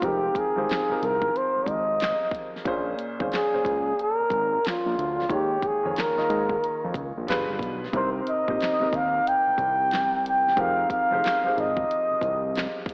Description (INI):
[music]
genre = R&B, neo-soul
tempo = 91 BPM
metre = 4/4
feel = swing 64% on 16ths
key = unclear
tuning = A4 = 442 Hz
[part]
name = breathy flugelhorn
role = melody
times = 0.0-12.9 s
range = F4 to G5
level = -26 LUFS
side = equal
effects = none
[part]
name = warm baby grand piano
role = accompaniment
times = 0.0-12.9 s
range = Bb2 to Eb5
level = -33 LUFS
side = equal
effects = slapback echo
[part]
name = fat analog bass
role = bass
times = 0.0-12.7 s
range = F1 to Ab2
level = -35 LUFS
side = equal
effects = none
[part]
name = pop drum kit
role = drums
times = 0.0-12.9 s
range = handclaps, hi-hat, kick drum, snare drum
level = -36 LUFS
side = equal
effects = none
[sound]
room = moderate concert hall reverb, RT60 2.0 s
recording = big arena sound, AM radio sound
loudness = -25 LUFS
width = mono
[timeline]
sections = 0.0-12.9 A section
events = none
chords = 0.0 Fm11; 2.7 Bbm7; 5.3 Eb9sus4; 7.3 G7b9; 7.9 Cm7; 10.6 Fm11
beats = | 0.02 0.68 1.34 2.00 | 2.66 3.32 3.98 4.64 | 5.30 5.96 6.61 7.27 | 7.93 8.59 9.25 9.91 | 10.57 11.23 11.89 12.55